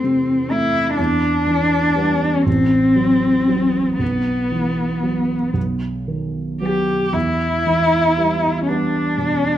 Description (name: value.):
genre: classical, romantic duo for cello and grand piano.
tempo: 37-42 BPM (dotted quarters).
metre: 6/8.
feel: rubato.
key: E minor.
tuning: A4 = 441 Hz.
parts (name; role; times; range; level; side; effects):
warm cello; melody; 0.0-9.6 s; B3 to G4; -17 LUFS; left 1 dB; none.
dark grand piano; accompaniment; 0.0-9.6 s; A1 to C4; -20 LUFS; right 2 dB; none.
room: moderate recital hall reverb, RT60 1.5 s.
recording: close, detailed microphones.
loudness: -16 LUFS.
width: side -11 dB against mid.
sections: 0.0-9.6 A section.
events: none.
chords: 0.0 Am/E; 1.0 Em; 2.5 F#dim/A; 4.0 Bsus4; 5.6 B; 7.1 Em.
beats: | 0.99 2.47 | 4.01 5.56 | 7.15 8.71.